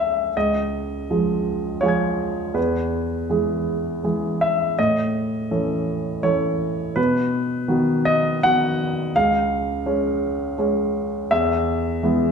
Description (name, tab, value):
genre	neoclassical minimalist piano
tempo	82 BPM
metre	3/4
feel	rubato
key	unclear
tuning	A4 = 442 Hz
part	warm baby grand piano	solo	0.0-12.3 s	C#2 to G#6	-19 LUFS	equal	none
room	wet recital hall reverb, RT60 1.4 s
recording	none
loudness	-19 LUFS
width	side -6 dB against mid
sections	0.3-12.3 A section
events	none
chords	0.3 C#; 2.6 E; 4.8 A; 7.0 B; 9.1 C#; 11.3 E